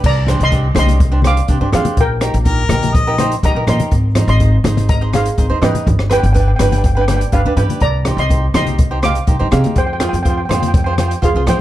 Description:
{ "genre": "calypso", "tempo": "123 BPM", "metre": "4/4", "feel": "straight", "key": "C minor", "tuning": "A4 = 440 Hz", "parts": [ { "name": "steel pan", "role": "melody", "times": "0.0-11.6 s", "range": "Ab4 to D6", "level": "-20 LUFS", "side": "equal", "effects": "none" }, { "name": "upright bass", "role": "bass", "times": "0.0-11.6 s", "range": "G1 to F3", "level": "-16 LUFS", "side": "equal", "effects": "none" }, { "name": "open jazz drum kit", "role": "drums", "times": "0.0-11.6 s", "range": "crash cymbal, hi-hat, kick drum, rim click", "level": "-18 LUFS", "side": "equal", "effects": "none" }, { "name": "cavaquinho", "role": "accompaniment", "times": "0.3-11.6 s", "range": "D4 to Eb5", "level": "-21 LUFS", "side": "right 2 dB", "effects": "none" }, { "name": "congas", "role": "percussion", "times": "0.3-11.6 s", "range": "none", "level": "-20 LUFS", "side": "left 1 dB", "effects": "none" }, { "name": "clear harmonica", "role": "second line", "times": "2.5-3.3 s", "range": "Bb4 to Eb5", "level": "-20 LUFS", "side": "left 3 dB", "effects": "none" } ], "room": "little or no reverb", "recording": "dark, warm production", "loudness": "-12 LUFS", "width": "side -14 dB against mid", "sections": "0.0-11.6 A section", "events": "none", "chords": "0.0 Csus2; 2.0 Eb/Bb; 3.9 Ab; 5.9 G; 7.8 Cmadd9; 9.8 Fm" }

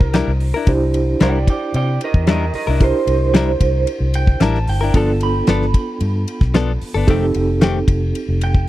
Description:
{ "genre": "straight-eighth soul blues", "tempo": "112 BPM", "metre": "4/4", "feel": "straight", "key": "C mixolydian", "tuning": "A4 = 440 Hz", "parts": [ { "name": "electric guitar through a small old amp", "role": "second line", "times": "0.0-8.7 s", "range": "Bb4 to B5", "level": "-24 LUFS", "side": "right 6 dB", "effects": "spring reverb, tape echo" }, { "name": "mellow reed electric piano", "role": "accompaniment", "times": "0.0-8.7 s", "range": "B3 to C5", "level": "-23 LUFS", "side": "right 3 dB", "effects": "fast tremolo" }, { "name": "vintage muted fingered electric bass", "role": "bass", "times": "0.0-8.7 s", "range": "F1 to C3", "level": "-18 LUFS", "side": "equal", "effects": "none" }, { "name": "damped 70s drum kit", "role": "drums", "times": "0.0-8.7 s", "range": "hi-hat, kick drum, ride cymbal, snare drum", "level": "-15 LUFS", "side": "equal", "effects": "none" }, { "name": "direct-recorded clean electric guitar", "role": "stabs", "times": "0.1-7.8 s", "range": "Eb3 to Bb4", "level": "-21 LUFS", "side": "left 6 dB", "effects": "harmonic tremolo" } ], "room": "small room ambience", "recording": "dry, close 1970s-style studio recording", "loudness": "-14 LUFS", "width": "side -15 dB against mid", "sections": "0.0-8.7 A section", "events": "clean electric guitar solo 0.0-8.7", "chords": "0.0 C9; 4.9 G9; 7.1 F9" }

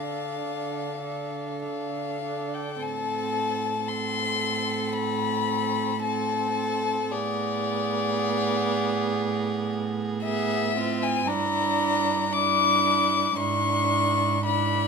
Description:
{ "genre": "classical, slow romantic movement for string quartet", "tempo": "50-58 BPM", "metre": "4/4", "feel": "rubato", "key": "A minor", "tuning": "A4 = 435 Hz", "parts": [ { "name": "warm violin", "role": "melody", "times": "0.0-14.9 s", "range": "D5 to D6", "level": "-26 LUFS", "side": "left 6 dB", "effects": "none" }, { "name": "rich violin", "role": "second line", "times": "0.0-14.9 s", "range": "E4 to A4", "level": "-32 LUFS", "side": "right 1 dB", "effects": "none" }, { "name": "dark viola", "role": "accompaniment", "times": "0.0-14.9 s", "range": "B3 to D4", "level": "-31 LUFS", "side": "right 8 dB", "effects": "none" }, { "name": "warm cello", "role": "bass", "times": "0.0-14.9 s", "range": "G2 to D3", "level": "-32 LUFS", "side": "right 5 dB", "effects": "none" } ], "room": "light reverb", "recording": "minimal, uncompressed stereo recording", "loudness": "-24 LUFS", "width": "side -5 dB against mid", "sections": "0.0-2.8 A section; 2.8-14.9 B section", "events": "none", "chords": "0.0 Dm; 2.8 Am; 7.1 Eadd11/A (rootless); 11.3 Em7b5/G; 13.4 E7/G#" }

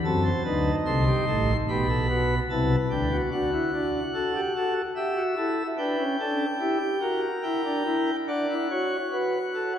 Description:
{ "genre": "classical, baroque-style 4-part fugue for pipe organ", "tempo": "73 BPM", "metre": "4/4", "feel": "straight", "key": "unclear", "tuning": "A4 = 440 Hz", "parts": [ { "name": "pipe organ, sparkling flutes", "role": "solo", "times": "0.0-9.8 s", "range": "A1 to C6", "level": "-23 LUFS", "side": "equal", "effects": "none" } ], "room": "wet church reverb, RT60 2.7 s", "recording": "dark, warm production", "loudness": "-23 LUFS", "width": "side -9 dB against mid", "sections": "0.0-9.8 A section", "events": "none", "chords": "0.1 F#dim7; 1.7 G/B; 3.3 D; 5.0 Em7; 6.6 Em9b5; 8.3 D" }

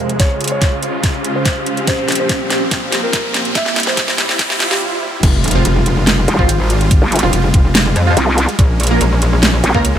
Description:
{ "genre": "heavy wobble dubstep", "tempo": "143 BPM", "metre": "4/4", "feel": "half-time", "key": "F harmonic minor", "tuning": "A4 = 441 Hz", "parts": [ { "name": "felt-muted upright piano", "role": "melody", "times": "0.0-4.8 s", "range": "G4 to E5", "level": "-24 LUFS", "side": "right 1 dB", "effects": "low-pass filter, digital delay" }, { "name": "supersaw chords", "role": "sustained chords", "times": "0.0-10.0 s", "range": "F2 to F4", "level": "-21 LUFS", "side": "right 1 dB", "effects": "sidechain pumping, low-pass filter" }, { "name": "riser, swell and impact", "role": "sound effects", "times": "0.0-6.9 s", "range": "none", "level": "-23 LUFS", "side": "equal", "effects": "none" }, { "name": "granular cloud pad", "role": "texture", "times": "0.0-4.8 s", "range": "Bb3 to F5", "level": "-23 LUFS", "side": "equal", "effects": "built-in reverb, sidechain pumping" }, { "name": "dubstep drum kit", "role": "drums", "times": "0.1-9.9 s", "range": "crash cymbal, hi-hat, snare drum", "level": "-17 LUFS", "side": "equal", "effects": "high-pass filter on hats, high-pass filter on snare, high-pass filter on cymbals" }, { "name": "electronic kick drum", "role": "drums", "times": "0.2-9.8 s", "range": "none", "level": "-14 LUFS", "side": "equal", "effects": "none" }, { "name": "metallic wobble bass", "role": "bass", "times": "5.2-10.0 s", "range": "F1 to F2", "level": "-14 LUFS", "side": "equal", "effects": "chorus, overdrive" }, { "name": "orchestra-hit-like synth stab", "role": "stabs", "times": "5.5-9.8 s", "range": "F3 to Bb4", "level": "-20 LUFS", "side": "right 2 dB", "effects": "built-in reverb, phaser, digital delay" }, { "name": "vowel-sweep wobble bass", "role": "bass", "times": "6.3-9.7 s", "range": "F1 to C2", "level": "-13 LUFS", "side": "equal", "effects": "chorus, overdrive" } ], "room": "little or no reverb", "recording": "high-pass filter", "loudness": "-12 LUFS", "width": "side -10 dB against mid", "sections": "0.0-5.2 A section; 5.2-10.0 B section", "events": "build-up 0.0-5.2; drum fill 0.0-4.8; riser 0.0-4.8; filter sweep on supersaw synth 0.0-5.2; filter sweep on felt piano 0.0-5.2; filter sweep 0.0-5.2; swell 4.4-5.2; break 4.8-5.2; drop 5.2-10.0; impact 5.2-6.9", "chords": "0.2 Db; 1.9 Bbsus2; 3.6 C; 5.2 Fmadd9; 8.6 Bbm7" }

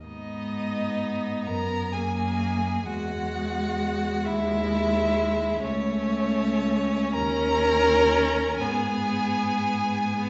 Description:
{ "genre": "classical, slow romantic movement for string quartet", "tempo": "38-45 BPM (dotted quarters)", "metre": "6/8", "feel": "rubato", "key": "G# minor", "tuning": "A4 = 440 Hz", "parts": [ { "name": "warm violin", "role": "melody", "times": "0.1-10.3 s", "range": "C#5 to A#5", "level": "-32 LUFS", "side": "equal", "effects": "none" }, { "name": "rich violin", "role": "second line", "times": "0.1-10.3 s", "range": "C#4 to A#4", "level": "-30 LUFS", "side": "equal", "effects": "none" }, { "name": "rich viola", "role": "accompaniment", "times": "0.1-10.3 s", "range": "G#3 to C#4", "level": "-31 LUFS", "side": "equal", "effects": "none" }, { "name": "dark cello", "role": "bass", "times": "0.1-10.3 s", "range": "C#2 to G#2", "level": "-32 LUFS", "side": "equal", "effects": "none" } ], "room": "wet scoring stage reverb, RT60 1.4 s", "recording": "heard from further back in the room, nothing above 7.8 kHz", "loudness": "-25 LUFS", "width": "mono", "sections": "0.0-10.3 A section", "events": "none", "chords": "0.1 G#m; 2.9 E; 5.6 A/C#; 7.2 D#5; 8.6 G#m" }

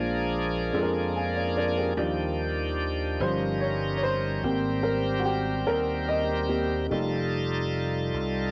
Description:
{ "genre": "gospel", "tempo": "49 BPM (dotted quarters)", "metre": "6/8", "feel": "straight", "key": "Eb major", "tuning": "A4 = 440 Hz", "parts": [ { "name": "warm upright piano", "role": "accompaniment", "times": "0.0-8.5 s", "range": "Bb2 to Ab5", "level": "-31 LUFS", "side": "equal", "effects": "cassette tape" }, { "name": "bright tonewheel organ", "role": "sustained chords", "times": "0.0-8.5 s", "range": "Eb3 to Bb4", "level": "-32 LUFS", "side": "equal", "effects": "slow rotary speaker, overdrive, cassette tape" }, { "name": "vintage slap bass", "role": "bass", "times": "0.0-8.5 s", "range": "F1 to F2", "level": "-34 LUFS", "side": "equal", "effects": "none" } ], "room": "moderate studio ambience, RT60 0.5 s", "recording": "home recording on cassette, nothing above 8.0 kHz", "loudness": "-27 LUFS", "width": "mono", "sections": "0.0-2.0 A section; 2.0-8.5 B section", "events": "upright piano solo 2.0-8.5", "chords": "0.0 Bb7; 2.0 Ebmaj9; 3.2 Eb7/G; 4.4 Abmaj9; 6.9 F9" }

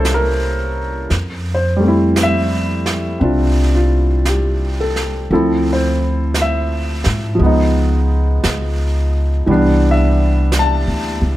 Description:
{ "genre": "jazz ballad", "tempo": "57 BPM", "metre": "4/4", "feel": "swing 68% on 8ths", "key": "unclear", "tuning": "A4 = 443 Hz", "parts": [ { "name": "warm concert grand piano", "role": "accompaniment", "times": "0.0-11.4 s", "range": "E3 to A5", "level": "-17 LUFS", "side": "equal", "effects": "none" }, { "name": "upright bass", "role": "bass", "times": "0.0-11.4 s", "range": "C2 to Ab2", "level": "-16 LUFS", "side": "equal", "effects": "none" }, { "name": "jazz brush drum kit", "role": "drums", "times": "0.0-11.4 s", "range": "brushed snare drum, hi-hat, snare drum", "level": "-25 LUFS", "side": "right 3 dB", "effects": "none" } ], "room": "light reverb", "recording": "none", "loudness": "-14 LUFS", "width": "side -15 dB against mid", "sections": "0.0-11.4 A section", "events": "none", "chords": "0.0 C7b9; 1.1 Fmaj9; 5.3 Dm9; 7.4 Db9; 9.5 Cmaj9" }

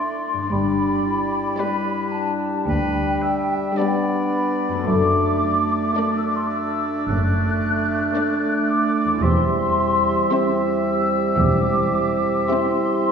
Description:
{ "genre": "classical, slow romantic movement for symphony orchestra", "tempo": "55 BPM", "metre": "4/4", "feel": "rubato", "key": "G major", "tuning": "A4 = 441 Hz", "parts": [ { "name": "warm symphonic violin section", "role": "melody", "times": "0.0-13.1 s", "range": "D5 to E5", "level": "-33 LUFS", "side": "left 4 dB", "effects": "none" }, { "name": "clear clarinet", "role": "second line", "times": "0.0-13.1 s", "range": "D4 to G4", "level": "-31 LUFS", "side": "right 2 dB", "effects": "none" }, { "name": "clear oboe", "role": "second line", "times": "0.0-13.1 s", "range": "B4 to E5", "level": "-32 LUFS", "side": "right 1 dB", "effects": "none" }, { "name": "mellow hollow large flute ensemble", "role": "second line", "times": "0.0-13.1 s", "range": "G5 to F#6", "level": "-24 LUFS", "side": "left 2 dB", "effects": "none" }, { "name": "warm chamber violin section", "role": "second line", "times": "0.0-13.1 s", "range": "D4 to G4", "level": "-35 LUFS", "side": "left 5 dB", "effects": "none" }, { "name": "dark symphonic viola section", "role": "accompaniment", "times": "0.0-13.1 s", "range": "G3 to C4", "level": "-30 LUFS", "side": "equal", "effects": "none" }, { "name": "mellow bassoon", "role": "accompaniment", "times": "0.0-13.1 s", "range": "G3 to C4", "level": "-26 LUFS", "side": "right 3 dB", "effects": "none" }, { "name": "mellow French horn section", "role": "sustained chords", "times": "0.0-13.1 s", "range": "G3 to E4", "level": "-26 LUFS", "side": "left 1 dB", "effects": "none" }, { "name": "concert harp", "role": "arpeggios", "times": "0.3-13.1 s", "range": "E2 to D5", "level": "-29 LUFS", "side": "left 3 dB", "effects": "none" }, { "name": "dark symphonic double bass section", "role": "bass", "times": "0.5-12.3 s", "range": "E1 to D2", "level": "-25 LUFS", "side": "right 1 dB", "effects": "none" }, { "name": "warm symphonic cello section", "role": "bass", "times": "0.5-12.3 s", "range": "D2 to G2", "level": "-27 LUFS", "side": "equal", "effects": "none" } ], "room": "wet scoring stage reverb, RT60 1.7 s", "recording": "heard from further back in the room", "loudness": "-18 LUFS", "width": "side -6 dB against mid", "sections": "0.0-13.1 A section", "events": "none", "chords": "0.0 D7(no3); 0.5 G; 4.9 D/F#; 9.2 C/E" }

